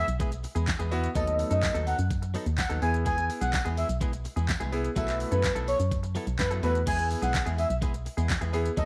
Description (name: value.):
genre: dance-pop.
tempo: 126 BPM.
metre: 4/4.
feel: straight.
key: E major.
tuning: A4 = 440 Hz.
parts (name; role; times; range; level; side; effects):
expressive synth lead; melody; 0.0-8.9 s; B4 to G#5; -32 LUFS; equal; chorus, sidechain pumping, slapback echo.
direct-recorded clean electric guitar; riff; 0.0-8.9 s; F#3 to A4; -40 LUFS; equal; lush chorus.
organ-like FM bass; bass; 0.0-8.9 s; B1 to F#2; -32 LUFS; equal; sidechain pumping.
smooth R&B drum kit; drums; 0.1-8.9 s; crash cymbal, handclaps, hi-hat, kick drum, shaker, snare drum; -34 LUFS; equal; none.
tambourine; percussion; 0.2-8.9 s; none; -51 LUFS; equal; none.
warm grand piano; accompaniment; 0.9-8.9 s; F#3 to B4; -35 LUFS; equal; sidechain pumping.
room: light reverb, digital ambience.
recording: none.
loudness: -28 LUFS.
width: mono.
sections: 0.0-6.9 A section; 6.9-8.9 A section.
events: drop 0.0-6.9, 6.9-8.9.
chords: 0.0 E; 1.2 B7/D#; 2.8 E; 5.0 B7sus4; 6.9 E.